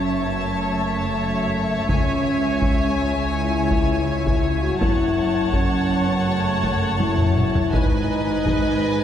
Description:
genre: cinematic, epic orchestral film score.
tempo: 82 BPM.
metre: 4/4.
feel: straight.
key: F# dorian.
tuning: A4 = 440 Hz.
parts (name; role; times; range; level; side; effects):
warm symphonic violin section; melody; 0.0-9.0 s; G#5 to A5; -30 LUFS; left 4 dB; none.
warm symphonic violin section; second line; 0.0-9.0 s; D#5 to F#5; -31 LUFS; left 3 dB; none.
clear symphonic viola section; accompaniment; 0.0-9.0 s; B4 to C#5; -28 LUFS; equal; none.
mellow French horn section; sustained chords; 0.0-9.0 s; A3 to F#4; -24 LUFS; left 2 dB; none.
rich symphonic cello section; bass; 0.0-9.0 s; C#2 to G#2; -26 LUFS; right 2 dB; none.
rich symphonic double bass section; bass; 0.0-9.0 s; F#1 to C#2; -27 LUFS; right 1 dB; none.
taiko ensemble; drums; 1.9-9.0 s; none; -24 LUFS; equal; none.
timpani; percussion; 1.9-2.9 s; C#3; -32 LUFS; right 2 dB; none.
room: wet concert hall reverb, RT60 2.3 s.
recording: heard from further back in the room.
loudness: -18 LUFS.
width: side -9 dB against mid.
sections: 0.0-9.0 A section.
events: drum fill 7.0-7.7.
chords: 0.0 F#m7; 1.9 C#m; 4.8 F#m7; 7.7 G#m.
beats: 0.44 1.17 | 1.89 2.62 3.35 4.07 | 4.80 5.53 6.26 7.00 | 7.72 8.45.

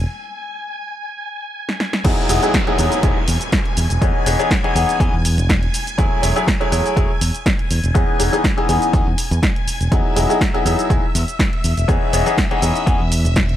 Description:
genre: filtered disco house.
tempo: 122 BPM.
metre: 4/4.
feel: swing 54% on 16ths.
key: E major.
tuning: A4 = 439 Hz.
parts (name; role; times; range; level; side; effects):
phased string machine; sustained chords; 0.0-13.6 s; E5 to G#6; -28 LUFS; left 1 dB; ensemble chorus, phaser, sidechain pumping, low-pass filter.
fingered electric bass; bass; 0.0-13.5 s; E1 to E2; -19 LUFS; equal; sidechain pumping, low-pass filter.
punchy analog drum machine; drums; 1.7-13.6 s; crash cymbal, hi-hat, shaker, snare drum; -22 LUFS; equal; small room ambience.
bright grand piano; accompaniment; 2.0-13.0 s; E3 to G#4; -19 LUFS; left 2 dB; phaser, sidechain pumping, low-pass filter.
electronic kick drum; drums; 2.0-13.5 s; none; -19 LUFS; equal; overdrive, small room ambience.
downlifter; sound effects; 2.0-6.0 s; none; -28 LUFS; equal; none.
room: little or no reverb.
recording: dry, gritty hardware recording, cassette tape.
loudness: -15 LUFS.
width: side -12 dB against mid.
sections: 0.0-2.0 A section; 2.0-13.6 B section.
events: filter sweep 0.0-2.0; break 0.1-2.0; drum fill 1.7-2.0; drop 2.0-13.6.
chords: 0.1 N.C.; 2.0 Emaj9; 3.8 C#m9/E; 6.0 F#m9/E; 8.0 Emaj7; 9.9 Emaj9; 11.6 C#m9/E.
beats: | 0.08 0.57 1.07 1.56 | 2.05 2.54 3.03 3.52 | 4.02 4.51 5.00 5.49 | 5.98 6.48 6.97 7.46 | 7.95 8.44 8.94 9.43 | 9.92 10.41 10.90 11.39 | 11.88 12.38 12.87 13.36.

